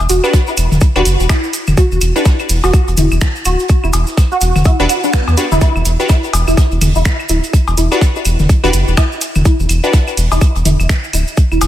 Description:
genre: minimal techno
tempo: 125 BPM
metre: 4/4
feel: swing 59% on 16ths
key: E minor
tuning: A4 = 438 Hz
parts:
  - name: round analog bass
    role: bass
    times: 0.0-11.7 s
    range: D1 to E2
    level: -14 LUFS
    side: equal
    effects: sidechain pumping
  - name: cabasa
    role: percussion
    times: 0.0-11.7 s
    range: none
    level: -24 LUFS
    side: right 2 dB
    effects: none
  - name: electronic cowbell, claves and toms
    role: percussion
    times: 0.0-11.7 s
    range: none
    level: -21 LUFS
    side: left 2 dB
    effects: ping-pong delay
  - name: resonant blip pluck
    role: riff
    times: 0.1-11.6 s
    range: B3 to F#4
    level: -19 LUFS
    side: equal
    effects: phaser, ensemble chorus, sidechain pumping, diffuse ambient delay
  - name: booming analog drum machine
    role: drums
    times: 0.1-11.7 s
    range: finger snaps, hi-hat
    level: -23 LUFS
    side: right 1 dB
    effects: none
  - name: open jazz drum kit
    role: drums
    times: 0.1-11.7 s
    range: hi-hat, snare drum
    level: -30 LUFS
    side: right 4 dB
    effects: sidechain pumping on hats, high-pass filter on hats, high-pass filter on snare, high-pass filter on room
  - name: wavetable chord stab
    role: stabs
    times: 0.2-9.9 s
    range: D4 to B4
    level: -18 LUFS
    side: left 1 dB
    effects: vintage 12-bit sampler grit, ping-pong delay
  - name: electronic kick drum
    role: drums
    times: 0.3-11.5 s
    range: none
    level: -11 LUFS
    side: equal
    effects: none
room: light reverb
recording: none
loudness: -10 LUFS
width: side -12 dB against mid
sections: 0.0-11.7 A section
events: none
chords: none

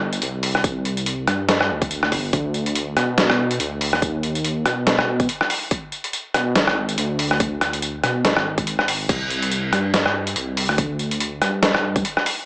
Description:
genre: deep dubstep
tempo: 142 BPM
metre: 4/4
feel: swing 57% on 16ths, half-time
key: unclear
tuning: A4 = 440 Hz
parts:
  - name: dark detuned saw bass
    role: bass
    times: 0.0-12.0 s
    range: G1 to B2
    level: -24 LUFS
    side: equal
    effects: none
  - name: trip hop sampler-style drum kit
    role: drums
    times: 0.1-12.4 s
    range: crash cymbal, hi-hat, rim click, snare drum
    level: -20 LUFS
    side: equal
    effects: none
  - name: electronic kick drum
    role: drums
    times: 0.6-12.0 s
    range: none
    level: -24 LUFS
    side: equal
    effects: overdrive
room: moderate spring reverb, RT60 1.9 s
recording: small speaker sound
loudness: -18 LUFS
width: side -24 dB against mid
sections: 0.0-12.5 A section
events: none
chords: none

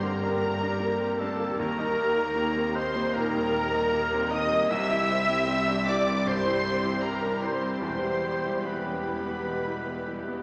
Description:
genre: cinematic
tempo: 76 BPM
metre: 4/4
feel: rubato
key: unclear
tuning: A4 = 440 Hz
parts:
  - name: rich studio violin section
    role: melody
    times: 0.0-10.4 s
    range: A5 to E6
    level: -36 LUFS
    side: equal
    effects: none
  - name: mellow hollow flute section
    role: second line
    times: 0.0-10.4 s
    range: A4 to E5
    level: -33 LUFS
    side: equal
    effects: none
  - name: warm oboe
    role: second line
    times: 0.0-10.4 s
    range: A4 to E5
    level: -36 LUFS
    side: equal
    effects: none
  - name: warm studio violin section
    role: second line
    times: 0.0-10.4 s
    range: A4 to E5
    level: -37 LUFS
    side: equal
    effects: none
  - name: clear baby grand piano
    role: accompaniment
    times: 0.0-10.4 s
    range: C2 to C5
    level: -35 LUFS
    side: equal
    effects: none
  - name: rich studio viola section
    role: accompaniment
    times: 0.0-10.4 s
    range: C3 to G4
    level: -40 LUFS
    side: equal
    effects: none
  - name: warm French horn section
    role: sustained chords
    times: 0.0-10.4 s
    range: G3 to G4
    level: -38 LUFS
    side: equal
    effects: none
  - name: clear studio double bass section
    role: bass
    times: 0.0-10.4 s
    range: E1 to Eb2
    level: -43 LUFS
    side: equal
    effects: none
  - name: rich studio cello section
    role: bass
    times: 0.0-10.4 s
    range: C2 to G2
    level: -36 LUFS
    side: equal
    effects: none
room: wet concert hall reverb, RT60 1.9 s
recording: none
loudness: -27 LUFS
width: mono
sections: 0.0-10.4 A section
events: none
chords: 0.0 Gmadd9; 1.6 Eb; 4.7 C; 7.8 Em

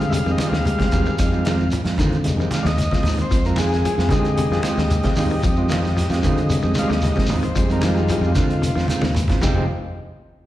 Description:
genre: afrobeat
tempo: 113 BPM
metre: 4/4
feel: straight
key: F dorian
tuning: A4 = 439 Hz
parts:
  - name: combo organ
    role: accompaniment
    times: 0.0-9.7 s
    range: G3 to F5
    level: -25 LUFS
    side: left 2 dB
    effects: slapback echo
  - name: semi-hollow electric guitar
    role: arpeggios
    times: 0.0-9.6 s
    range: C3 to F3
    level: -29 LUFS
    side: left 5 dB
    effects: vibrato effect
  - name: mellow electric guitar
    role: stabs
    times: 0.0-9.6 s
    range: Eb3 to F4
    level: -26 LUFS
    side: right 4 dB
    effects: slapback echo
  - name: fingered electric bass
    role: bass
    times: 0.0-9.7 s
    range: F1 to D3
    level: -21 LUFS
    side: equal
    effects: none
  - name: vintage drum kit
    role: drums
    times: 0.0-9.6 s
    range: crash cymbal, hi-hat, kick drum, snare drum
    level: -25 LUFS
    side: equal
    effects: none
  - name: shekere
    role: percussion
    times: 0.0-9.5 s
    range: none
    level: -30 LUFS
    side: equal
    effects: none
  - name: congas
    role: percussion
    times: 0.1-9.5 s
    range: none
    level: -26 LUFS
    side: equal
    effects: none
room: light reverb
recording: live gig heard through the venue's PA, recital hall reverb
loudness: -17 LUFS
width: side -14 dB against mid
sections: 0.0-9.7 A section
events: transistor combo organ solo 0.0-9.7; drum fill 8.9-9.7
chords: 0.0 Fm7; 9.7 N.C.

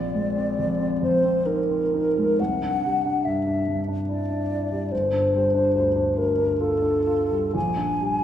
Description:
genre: classical, impressionist duo for flute and grand piano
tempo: 60-72 BPM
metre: 3/4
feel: rubato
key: unclear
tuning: A4 = 440 Hz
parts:
  - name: mellow hollow concert flute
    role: melody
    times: 0.0-8.2 s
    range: A4 to Ab5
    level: -23 LUFS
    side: left 1 dB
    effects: none
  - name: clear grand piano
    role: accompaniment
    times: 0.0-8.2 s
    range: G1 to F4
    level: -24 LUFS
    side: equal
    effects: none
room: wet recital hall reverb, RT60 1.3 s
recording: heard from further back in the room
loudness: -21 LUFS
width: side -10 dB against mid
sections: 0.0-8.2 A section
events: none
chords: 0.0 Bb11; 2.4 Cadd9; 4.9 G11; 7.5 Bb6

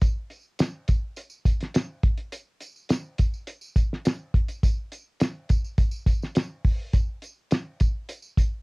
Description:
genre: indie pop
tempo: 104 BPM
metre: 4/4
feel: straight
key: none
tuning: none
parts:
  - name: cloth-damped thuddy drum kit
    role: drums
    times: 0.0-8.5 s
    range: hi-hat, kick drum, snare drum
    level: -22 LUFS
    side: equal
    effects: cassette tape
  - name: tambourine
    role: percussion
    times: 0.0-8.5 s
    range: none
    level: -44 LUFS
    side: right 2 dB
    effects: none
room: little or no reverb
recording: home recording on cassette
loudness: -24 LUFS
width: side -35 dB against mid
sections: 0.0-8.6 A section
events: none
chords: none

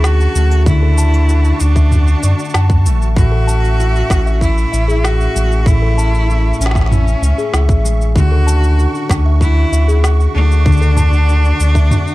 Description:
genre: folktronica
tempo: 96 BPM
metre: 4/4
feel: straight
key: unclear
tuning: A4 = 443 Hz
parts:
  - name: bright cello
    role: melody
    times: 0.0-12.1 s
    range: C#4 to F#4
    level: -21 LUFS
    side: equal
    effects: tape echo
  - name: music box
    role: second line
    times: 0.0-11.9 s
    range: G#4 to A5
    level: -26 LUFS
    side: left 4 dB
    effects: tape echo
  - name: musette accordion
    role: sustained chords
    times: 0.0-12.1 s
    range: F#4 to C#6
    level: -29 LUFS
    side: right 9 dB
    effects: none
  - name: concert harp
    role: arpeggios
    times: 0.0-12.1 s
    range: A2 to F#4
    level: -21 LUFS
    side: left 2 dB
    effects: none
  - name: warm sub bass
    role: bass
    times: 0.0-11.9 s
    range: A1 to F#2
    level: -12 LUFS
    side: equal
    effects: none
  - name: organic electronic drum kit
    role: drums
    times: 0.0-12.1 s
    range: shaker, snare drum, toms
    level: -21 LUFS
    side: equal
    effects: none
  - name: electronic kick drum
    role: drums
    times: 0.7-11.9 s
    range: none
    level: -13 LUFS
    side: equal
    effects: none
room: small room ambience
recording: dark, warm production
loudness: -10 LUFS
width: side -18 dB against mid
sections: 0.0-12.1 A section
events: break 11.9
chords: 0.0 Dmaj7; 3.2 Amaj7; 8.2 Dmaj7

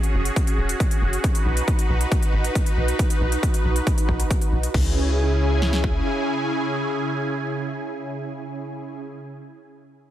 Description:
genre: uplifting trance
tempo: 137 BPM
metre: 4/4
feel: straight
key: C# minor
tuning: A4 = 439 Hz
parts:
  - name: supersaw pad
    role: sustained chords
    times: 0.0-9.0 s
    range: C#3 to G#5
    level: -26 LUFS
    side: right 1 dB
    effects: phaser, vintage 12-bit sampler grit, sidechain pumping
  - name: big-room dance drum kit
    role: drums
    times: 0.0-4.8 s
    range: crash cymbal, hi-hat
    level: -33 LUFS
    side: left 2 dB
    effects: overdrive, studio reverb
  - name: tight sequencer bass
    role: bass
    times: 0.1-6.0 s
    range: E1 to C#2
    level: -22 LUFS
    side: equal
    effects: sidechain pumping
  - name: big-room dance drum kit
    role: drums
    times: 0.4-5.9 s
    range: kick drum, snare drum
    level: -21 LUFS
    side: equal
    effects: overdrive, studio reverb
room: digital ambience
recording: none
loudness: -20 LUFS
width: side -12 dB against mid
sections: 0.0-4.7 A section; 4.7-8.2 B section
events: filter sweep on analog synth bass 0.0-4.7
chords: 0.0 F#sus2; 1.2 B; 4.7 C#m

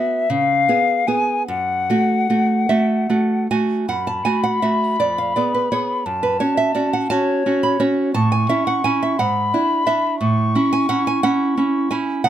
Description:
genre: romantic duo for flute and classical guitar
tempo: 48-60 BPM (dotted quarters)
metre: 6/8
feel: rubato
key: F# minor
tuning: A4 = 440 Hz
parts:
  - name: silver concert flute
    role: melody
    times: 0.0-12.3 s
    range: C#5 to C#6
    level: -20 LUFS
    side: left 4 dB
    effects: none
  - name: nylon-string guitar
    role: accompaniment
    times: 0.0-12.3 s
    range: F2 to B5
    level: -18 LUFS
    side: right 3 dB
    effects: none
room: light reverb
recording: close, detailed microphones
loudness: -16 LUFS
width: side -11 dB against mid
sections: 0.0-3.9 A section; 3.9-12.3 A section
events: none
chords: 0.3 C#7; 1.5 F#m; 5.0 Fdim7; 6.1 F#m; 8.1 A; 9.2 E7/G#; 10.2 A

